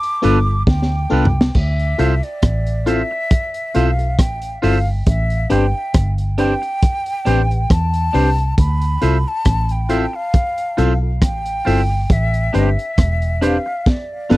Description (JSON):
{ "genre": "lovers rock reggae", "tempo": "68 BPM", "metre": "4/4", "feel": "swing 54% on 16ths", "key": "D dorian", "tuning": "A4 = 441 Hz", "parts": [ { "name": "breathy concert flute", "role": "melody", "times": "0.0-14.4 s", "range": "D5 to D6", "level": "-23 LUFS", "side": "equal", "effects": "tape echo" }, { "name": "crunchy breakbeat drum kit", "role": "drums", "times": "0.0-14.4 s", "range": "crash cymbal, hi-hat, kick drum, rim click, snare drum, toms", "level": "-15 LUFS", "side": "equal", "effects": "none" }, { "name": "FM electric piano", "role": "accompaniment", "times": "0.2-14.4 s", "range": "B3 to B4", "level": "-19 LUFS", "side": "left 2 dB", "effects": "chorus" }, { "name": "twangy electric guitar", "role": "stabs", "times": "0.2-14.4 s", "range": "D4 to E5", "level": "-22 LUFS", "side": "right 4 dB", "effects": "none" }, { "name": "vintage muted fingered electric bass", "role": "bass", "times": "0.2-14.4 s", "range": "E1 to E2", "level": "-18 LUFS", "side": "equal", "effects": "none" } ], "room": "light reverb", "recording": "dry, close 1970s-style studio recording", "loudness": "-15 LUFS", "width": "side -18 dB against mid", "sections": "0.0-1.5 A section; 1.5-14.4 B section", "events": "drum fill 0.7-1.5, 13.9-14.4", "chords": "0.0 G9; 1.5 Dm9 (rootless); 5.1 Am11; 8.6 Dm9 (rootless); 12.1 Am11; 13.9 G9" }